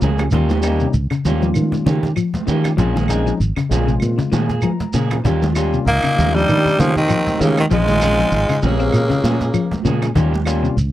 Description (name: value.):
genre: afrobeat.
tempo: 98 BPM.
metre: 4/4.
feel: swing 56% on 16ths.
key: Eb mixolydian.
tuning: A4 = 441 Hz.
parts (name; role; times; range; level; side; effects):
growling tenor saxophone; melody; 0.0, 5.9-9.8 s; Db3 to Bb3; -18 LUFS; right 1 dB; none.
breathy trumpet; second line; 0.0, 5.9-9.8 s; Bb3 to F4; -29 LUFS; right 5 dB; none.
growling baritone saxophone; second line; 0.0, 5.9-9.8 s; Db2 to Bb2; -26 LUFS; left 5 dB; none.
clean electric guitar; arpeggios; 0.0-10.9 s; C3 to C4; -22 LUFS; left 4 dB; none.
electric guitar through a small old amp; stabs; 0.0-10.7 s; F3 to Ab4; -25 LUFS; right 5 dB; none.
fingered electric bass; bass; 0.0-10.9 s; Ab1 to Eb3; -18 LUFS; right 1 dB; none.
congas; percussion; 0.0-10.5 s; none; -25 LUFS; right 3 dB; none.
shekere; percussion; 0.0-10.9 s; none; -25 LUFS; right 2 dB; none.
bright tine electric piano; accompaniment; 0.2-10.8 s; Db3 to Bb5; -25 LUFS; left 7 dB; none.
cajon; drums; 0.2-10.9 s; none; -29 LUFS; right 1 dB; none.
claves; percussion; 0.2-10.6 s; none; -33 LUFS; right 7 dB; none.
room: little or no reverb.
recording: dry, close 1970s-style studio recording.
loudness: -15 LUFS.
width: side -13 dB against mid.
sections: 0.0-10.9 A section.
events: tine electric piano fill 4.3-5.2; drum fill 4.6-5.2.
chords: 0.3 Eb7; 2.8 Bbm7; 5.2 Eb7; 7.7 Bbm7; 10.2 Eb7.